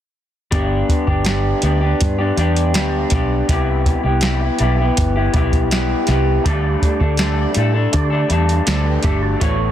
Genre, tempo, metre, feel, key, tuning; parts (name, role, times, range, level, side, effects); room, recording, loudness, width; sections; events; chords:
indie pop, bedroom pop; 81 BPM; 4/4; straight; G major; A4 = 440 Hz
electric guitar through a small old amp; accompaniment; 0.5-9.7 s; C3 to C#5; -19 LUFS; left 2 dB; lush chorus, warbly pitch drift
vintage muted fingered electric bass; bass; 0.5-9.7 s; G1 to D3; -18 LUFS; equal
soft vintage rhythm box; drums; 0.5-9.6 s; hi-hat, kick drum, snare drum; -20 LUFS; equal; overdrive
percussive tonewheel organ; accompaniment; 6.4-9.7 s; A3 to A5; -25 LUFS; right 7 dB; fast rotary speaker
digital ambience; dense, heavily limited modern master; -15 LUFS; side -11 dB against mid
0.5-9.7 A section
0.5 G; 3.5 Cmaj7; 6.5 Dsus4